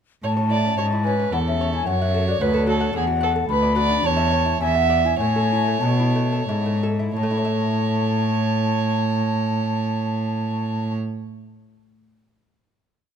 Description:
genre	classical, baroque-style sonata movement with continuo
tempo	87-112 BPM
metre	3/4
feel	straight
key	A major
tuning	A4 = 440 Hz
part	mellow baroque flute	melody	0.2-10.9 s	C#5 to B5	-25 LUFS	left 7 dB	none
part	warm violin	second line	0.2-10.9 s	G#4 to E5	-26 LUFS	right 7 dB	none
part	lute	accompaniment	0.2-11.2 s	D2 to F#5	-29 LUFS	left 2 dB	none
part	rich cello	bass	0.2-10.9 s	D2 to B2	-22 LUFS	right 1 dB	none
room	moderate recital hall reverb, RT60 1.5 s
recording	none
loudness	-19 LUFS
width	side -8 dB against mid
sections	0.2-7.2 A section; 7.2-11.3 final chord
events	slowing down 2.7-7.2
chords	0.2 A; 1.9 F#m; 3.5 Bm/D; 4.0 A/E; 4.6 E9; 5.2 A

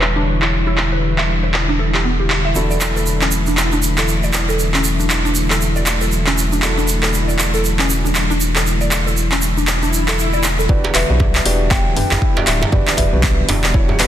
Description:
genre	afro house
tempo	118 BPM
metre	4/4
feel	swing 59% on 16ths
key	E dorian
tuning	A4 = 441 Hz
part	warm analog pad	sustained chords	0.0-14.1 s	D3 to C#5	-23 LUFS	left 2 dB	chorus, sidechain pumping
part	felt-muted upright piano	stabs	0.0-14.1 s	D4 to D5	-27 LUFS	equal	sidechain pumping, low-pass filter, ping-pong delay
part	warm sub bass	bass	0.0-14.1 s	D1 to B1	-19 LUFS	equal	sidechain pumping
part	deep house drum kit	drums	0.0-14.1 s	handclaps, hi-hat, toms	-19 LUFS	equal	low-pass filter on snare, low-pass filter on hats, low-pass filter on toms, low-pass filter on room
part	mallet-like synth pluck	arpeggios	0.2-14.1 s	B3 to E5	-24 LUFS	equal	ensemble chorus, sidechain pumping, ping-pong delay
part	egg shaker	percussion	2.6-10.7 s	none	-24 LUFS	right 5 dB	none
part	swell	sound effects	9.8-10.7 s	none	-25 LUFS	left 2 dB	none
part	kalimba	melody	10.7-14.1 s	D5 to G5	-24 LUFS	right 1 dB	ping-pong delay
part	electronic kick drum	drums	10.7-13.9 s	none	-16 LUFS	equal	none
part	djembe	percussion	10.8-14.0 s	none	-23 LUFS	right 3 dB	none
room	light reverb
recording	dense, heavily limited modern master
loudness	-14 LUFS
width	side -11 dB against mid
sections	0.0-10.7 A section; 10.7-14.1 B section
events	filter sweep on felt piano 0.0-10.7; swell 9.8-10.7; drop 10.7-14.1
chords	0.0 Em7; 2.6 Dadd9/E; 10.7 Em7

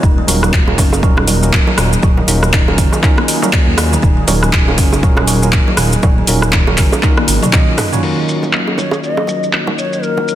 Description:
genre	afro house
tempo	120 BPM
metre	4/4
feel	swing 59% on 16ths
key	Eb minor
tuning	A4 = 440 Hz
part	warm analog pad	sustained chords	0.0-10.3 s	Eb3 to Eb5	-23 LUFS	left 1 dB	chorus, vintage 12-bit sampler grit, sidechain pumping
part	kalimba	arpeggios	0.0-8.0 s	Eb3 to Eb4	-19 LUFS	right 1 dB	sidechain pumping, digital delay
part	smooth gliding synth bass	bass	0.0-7.4 s	Eb1 to Eb2	-16 LUFS	equal	sidechain pumping
part	deep house drum kit	drums	0.0-10.3 s	crash cymbal, handclaps, hi-hat, rim click, shaker, toms	-17 LUFS	equal	low-pass filter on perc, low-pass filter on snare, low-pass filter on hats, low-pass filter on toms, low-pass filter on cymbals
part	electronic kick drum	drums	0.0-7.6 s	none	-12 LUFS	equal	none
part	tine electric piano	stabs	0.3-10.3 s	Eb3 to Eb5	-22 LUFS	right 3 dB	medium stereo tremolo, sidechain pumping, digital delay
part	bongos	percussion	0.4-10.3 s	none	-22 LUFS	right 3 dB	none
part	bass bansuri	melody	8.8-10.3 s	Bb4 to Eb5	-19 LUFS	left 4 dB	digital delay
room	light reverb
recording	dense, heavily limited modern master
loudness	-10 LUFS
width	side -12 dB against mid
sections	0.0-8.0 A section; 8.0-10.3 B section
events	drum fill 7.0-8.0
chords	0.0 Ebm7

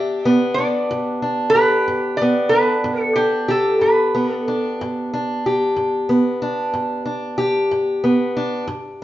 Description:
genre	acoustic country blues, solo or duo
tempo	62 BPM (dotted quarters)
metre	12/8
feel	straight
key	G major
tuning	A4 = 441 Hz
part	metal-body resonator slide guitar	melody	0.0-4.5 s	G4 to E5	-18 LUFS	equal	none
part	fingerpicked steel-string acoustic guitar	accompaniment	0.0-9.0 s	G2 to G4	-19 LUFS	equal	none
room	wet stone room reverb, RT60 0.9 s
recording	band playing live in one room, nothing above 7.5 kHz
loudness	-16 LUFS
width	side -14 dB against mid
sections	0.0-9.0 A section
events	none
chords	0.0 G

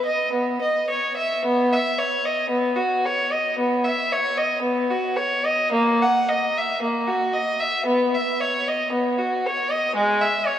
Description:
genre	classical, baroque-style suite movement for unaccompanied violin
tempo	57 BPM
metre	4/4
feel	rubato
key	B major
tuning	A4 = 441 Hz
part	warm violin	solo	0.0-10.6 s	G#3 to F#5	-20 LUFS	equal	none
room	wet cathedral reverb, RT60 4.8 s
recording	none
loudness	-20 LUFS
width	side -10 dB against mid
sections	0.0-1.5 A section; 1.5-10.6 B section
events	none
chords	none

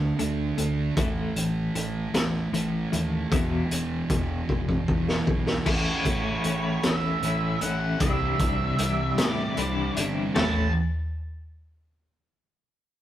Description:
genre	quiet-loud alternative rock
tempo	51 BPM (dotted quarters)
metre	6/8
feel	straight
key	unclear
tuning	A4 = 440 Hz
part	twelve-string electric guitar	arpeggios	0.0-10.7 s	E2 to E4	-31 LUFS	left 4 dB	tremolo
part	thick fuzz guitar	riff	0.0-10.7 s	E2 to E4	-30 LUFS	right 3 dB	distortion
part	fuzz fingered electric bass	bass	0.0-10.7 s	E1 to A2	-31 LUFS	equal	overdrive
part	raw garage drum kit	drums	0.2-10.5 s	crash cymbal, hi-hat, kick drum, snare drum, toms	-27 LUFS	equal	none
part	octave-fuzz lead guitar	melody	5.7-10.7 s	C#5 to A5	-31 LUFS	right 2 dB	distortion
room	moderate stone room reverb, RT60 1.1 s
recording	rough rehearsal-room recording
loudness	-23 LUFS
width	side -12 dB against mid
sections	0.0-5.7 A section; 5.7-10.3 B section; 10.3-12.7 C section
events	drum fill 4.5-5.7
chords	0.0 D5; 1.0 A5; 3.3 E5; 5.7 A; 8.0 Cadd9; 10.3 A

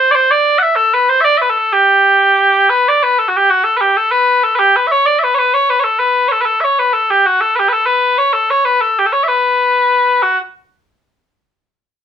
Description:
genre	celtic folk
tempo	127 BPM (dotted quarters)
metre	6/8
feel	straight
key	B minor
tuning	A4 = 440 Hz
part	mellow small bagpipes	solo	0.0-10.4 s	F#4 to F#5	-10 LUFS	equal	none
room	moderate studio reverb, RT60 0.5 s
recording	band playing live in one room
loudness	-10 LUFS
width	side -8 dB against mid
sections	0.0-2.7 A section; 2.7-10.2 B section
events	none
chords	none

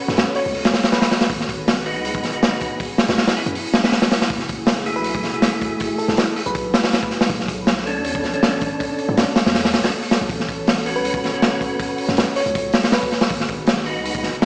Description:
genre	drum and bass, jungle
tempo	160 BPM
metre	4/4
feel	straight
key	F# minor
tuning	A4 = 439 Hz
part	airy breathy pad	sustained chords	0.0-14.5 s	D3 to C#5	-28 LUFS	equal	chorus
part	percussive tonewheel organ	stabs	0.0-14.3 s	A3 to B4	-25 LUFS	equal	chorus vibrato, fast rotary speaker, dub echo
part	long sustained 808-style bass	bass	0.1-14.5 s	E1 to G#2	-28 LUFS	equal	none
part	crunchy breakbeat drum kit	drums	0.1-14.5 s	hi-hat, kick drum, snare drum	-18 LUFS	equal	none
part	bell-like FM electric piano	melody	0.4-1.3, 5.0-6.7, 11.0-13.3 s	A4 to C#5	-27 LUFS	equal	chorus, phaser, dub echo
room	moderate plate reverb, RT60 1.6 s, small room ambience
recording	played on a big sound system in a bare room, stone room reverb, vinyl crackle, small speaker sound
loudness	-17 LUFS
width	side -28 dB against mid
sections	0.0-4.3 A section; 4.3-14.5 A section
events	drop 0.0-4.3, 4.3-14.5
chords	0.0 A69; 1.3 G#m7; 2.8 C#m7; 4.3 F#m9; 7.3 Bm9; 10.3 A69; 13.3 G#m7

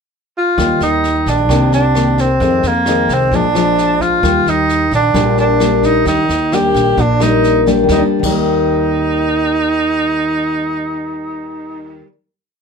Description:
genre	bossa nova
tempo	131 BPM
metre	4/4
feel	straight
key	Eb major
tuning	A4 = 442 Hz
part	breathy tenor saxophone	melody	0.4-12.0 s	Bb3 to G4	-15 LUFS	right 2 dB	none
part	nylon-string guitar	accompaniment	0.6-12.1 s	F2 to D4	-16 LUFS	left 3 dB	none
part	upright bass	bass	0.6-12.0 s	Bb1 to F2	-20 LUFS	right 1 dB	none
part	jazz brush drum kit	drums	0.6-8.4 s	crash cymbal, kick drum, rim click, snare drum	-25 LUFS	equal	none
room	light reverb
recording	none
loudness	-12 LUFS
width	side -5 dB against mid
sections	0.0-0.6 pickup bar; 0.6-7.9 A section; 7.9-11.6 final chord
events	none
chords	0.0 N.C.; 0.6 Eb; 1.5 Cm9; 2.4 Fm7; 3.3 Bb7; 4.2 Ebmaj7; 7.9 Eb

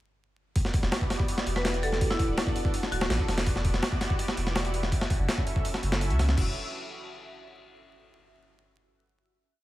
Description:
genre	drum and bass, jungle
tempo	165 BPM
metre	4/4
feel	straight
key	E dorian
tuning	A4 = 440 Hz
part	lush unison pad	sustained chords	0.7-6.5 s	B3 to E5	-35 LUFS	equal	chorus, phaser, vintage 12-bit sampler grit
part	breakbeat sampler-style drum kit	drums	0.6-6.4 s	crash cymbal, hi-hat, kick drum, snare drum	-27 LUFS	equal	studio reverb
part	saturated sub bass	bass	0.8-6.5 s	D1 to C#2	-28 LUFS	equal	none
part	marimba with medium hard mallets	melody	1.6-3.3 s	E4 to B4	-34 LUFS	equal	dub echo
room	little or no reverb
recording	vinyl crackle, faint mains hum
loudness	-25 LUFS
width	side -16 dB against mid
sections	0.6-6.4 drop; 6.4-7.8 final chord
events	drop 0.6-6.4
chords	0.6 Em9; 2.0 Bm7/D; 3.5 Em9; 4.9 F#m7; 6.4 Em9

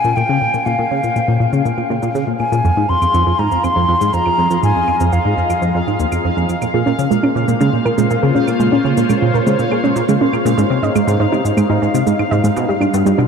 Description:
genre	ambient, sequencer-driven space music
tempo	121 BPM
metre	4/4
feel	straight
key	Bb dorian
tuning	A4 = 441 Hz
part	mellow hollow silver concert flute	melody	0.0-6.1 s	F5 to C6	-18 LUFS	left 2 dB	shimmer reverb, ping-pong delay
part	phased analog pad	sustained chords	0.0-13.3 s	Bb2 to F5	-22 LUFS	equal	phaser, chorus, shimmer reverb
part	tight sequenced synth	riff	0.0-13.3 s	Eb2 to Db3	-17 LUFS	right 1 dB	chorus, ping-pong delay
part	cabasa and claves	percussion	0.0-13.2 s	none	-34 LUFS	right 3 dB	ping-pong delay
part	bubbling stepped-filter texture	texture	0.0-13.3 s	F5	-26 LUFS	left 3 dB	chorus, built-in reverb, shimmer reverb
part	soft round pluck	arpeggios	6.7-13.3 s	G3 to Eb5	-17 LUFS	right 2 dB	chorus, auto-pan, shimmer reverb, ping-pong delay
room	wet huge ambient reverb, RT60 7.3 s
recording	dark, warm production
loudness	-13 LUFS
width	side -6 dB against mid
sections	0.0-13.3 A section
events	fade-in on analog synth pad 0.0-13.3; fade-in on drum 0.0-13.3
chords	0.0 Bbm7; 2.6 Fm7; 6.6 Bbm7; 10.6 Ab; 12.6 G7

